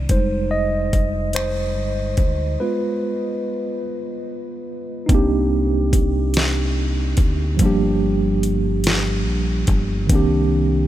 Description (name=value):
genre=slow six-eight R&B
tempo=48 BPM (dotted quarters)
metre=6/8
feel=straight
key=C minor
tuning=A4 = 442 Hz
part: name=mellow tine electric piano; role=accompaniment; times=0.0-10.9 s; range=Eb3 to Eb5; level=-21 LUFS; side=right 2 dB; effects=medium stereo tremolo
part: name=deep dub fingered electric bass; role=bass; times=0.0-10.9 s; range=F1 to D2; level=-22 LUFS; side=equal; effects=none
part: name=smooth R&B drum kit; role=drums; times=0.1-10.3 s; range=finger snaps, hi-hat, kick drum, snare drum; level=-20 LUFS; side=equal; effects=none
room=light reverb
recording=none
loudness=-17 LUFS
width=side -13 dB against mid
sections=0.0-5.1 A section; 5.1-10.9 B section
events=tine electric piano solo 0.0-5.1; break 2.6-5.1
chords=0.1 Fm9; 2.6 Abm6; 5.1 Cm7; 7.6 Gm7; 10.1 Cm9